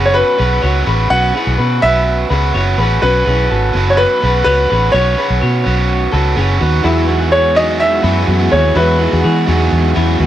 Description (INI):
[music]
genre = indie pop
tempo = 126 BPM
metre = 4/4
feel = straight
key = E major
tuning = A4 = 440 Hz
[part]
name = bright upright piano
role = melody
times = 0.0-9.4 s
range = B4 to F#5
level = -15 LUFS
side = equal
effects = none
[part]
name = overdriven electric guitar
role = accompaniment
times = 0.0-10.3 s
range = E3 to B4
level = -18 LUFS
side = right 5 dB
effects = none
[part]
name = clean electric guitar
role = arpeggios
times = 0.0-10.3 s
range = B3 to C#5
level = -20 LUFS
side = left 4 dB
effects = analog delay
[part]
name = vintage muted fingered electric bass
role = bass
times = 0.0-10.3 s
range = F#1 to E3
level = -15 LUFS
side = equal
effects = none
[part]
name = warm upright piano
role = accompaniment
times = 6.8-10.3 s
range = E4 to G#4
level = -23 LUFS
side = right 2 dB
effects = none
[part]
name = string machine, violins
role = sustained chords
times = 6.8-10.3 s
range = E3 to F#4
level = -21 LUFS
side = equal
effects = ensemble chorus
[sound]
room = light reverb, small room reverb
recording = none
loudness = -11 LUFS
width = side -12 dB against mid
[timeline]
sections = 0.0-6.9 A section; 6.9-10.3 B section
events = none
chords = 0.0 Bsus2; 6.9 Eadd9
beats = 0.15 0.63 | 1.11 1.59 2.07 2.55 | 3.02 3.50 3.98 4.46 | 4.94 5.42 5.90 6.37 | 6.85 7.33 7.81 8.28 | 8.76 9.24 9.72 10.20